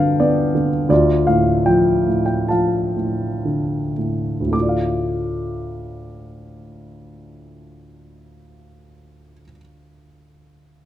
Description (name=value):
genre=classical, lyrical solo piano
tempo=51-90 BPM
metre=4/4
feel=rubato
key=D dorian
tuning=A4 = 441 Hz
part: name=warm grand piano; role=solo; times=0.0-10.9 s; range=D2 to D6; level=-17 LUFS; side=equal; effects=none
room=light reverb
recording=dark, warm production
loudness=-16 LUFS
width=side -12 dB against mid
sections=0.0-4.5 A section; 4.5-8.9 B section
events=slowing down 0.0-4.5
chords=0.0 G; 0.9 Dm